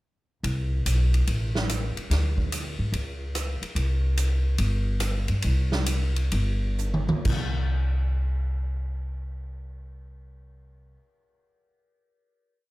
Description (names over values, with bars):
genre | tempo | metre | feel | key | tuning
jazz, big band swing | 124-145 BPM | 4/4 | swing 66% on 8ths | unclear | A4 = 441 Hz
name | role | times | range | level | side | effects
upright bass | bass | 0.4-11.0 s | G1 to Ab2 | -25 LUFS | equal | none
swinging big-band drum kit | drums | 0.4-7.4 s | crash cymbal, hi-hat, kick drum, ride cymbal, rim click, snare drum, toms | -30 LUFS | right 1 dB | none
room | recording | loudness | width
little or no reverb | none | -24 LUFS | side -19 dB against mid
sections
0.4-7.3 A section; 7.3-11.1 final note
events
slowing down 3.8-7.3; drum fill 6.8-7.3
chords
none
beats
| 0.44 0.86 1.27 1.69 | 2.10 2.51 2.93 3.34 | 3.75 4.17 4.58 5.01 | 5.44 5.88 6.33 6.79 | 7.26 7.75 8.23 8.71 | 9.20 9.68 10.16 10.65